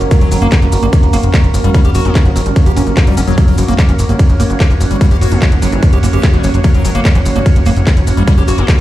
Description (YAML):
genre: psychedelic trance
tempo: 147 BPM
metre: 4/4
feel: straight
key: F# major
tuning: A4 = 440 Hz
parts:
  - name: resonant blip pluck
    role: second line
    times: 0.0-0.3, 4.4-6.4 s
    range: E3 to C#4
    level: -29 LUFS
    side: left 1 dB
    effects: none
  - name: overtone-sweeping drone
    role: sustained chords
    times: 0.0-8.8 s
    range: A#3 to C#5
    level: -20 LUFS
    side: right 2 dB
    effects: chorus, built-in reverb, sidechain pumping
  - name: plucky analog bass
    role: bass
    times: 0.0-8.6 s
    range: F#1 to G1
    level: -12 LUFS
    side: equal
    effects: none
  - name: garage drum kit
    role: drums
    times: 0.0-8.8 s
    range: handclaps, hi-hat, ride cymbal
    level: -23 LUFS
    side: equal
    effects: none
  - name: maracas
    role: percussion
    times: 0.0-8.8 s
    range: none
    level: -31 LUFS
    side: left 4 dB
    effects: none
  - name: airy breathy pad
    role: texture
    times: 0.0-8.8 s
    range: C#4 to F#6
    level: -23 LUFS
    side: right 2 dB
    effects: chorus, sidechain pumping
  - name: liquid acid bass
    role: riff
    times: 0.1-8.8 s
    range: E3 to G4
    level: -19 LUFS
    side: moving between left 5 dB and right 5 dB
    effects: phaser, auto-pan, sidechain pumping, tape echo
  - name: electronic kick drum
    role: drums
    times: 0.1-8.8 s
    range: none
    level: -9 LUFS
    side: equal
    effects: none
room: little or no reverb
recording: played on a big sound system in a bare room, large studio reverb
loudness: -9 LUFS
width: side -14 dB against mid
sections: 0.0-8.8 A section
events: none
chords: 0.0 F#5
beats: | 0.11 0.52 0.93 1.34 | 1.75 2.15 2.56 2.97 | 3.38 3.79 4.19 4.60 | 5.01 5.42 5.83 6.23 | 6.64 7.05 7.46 7.87 | 8.28 8.68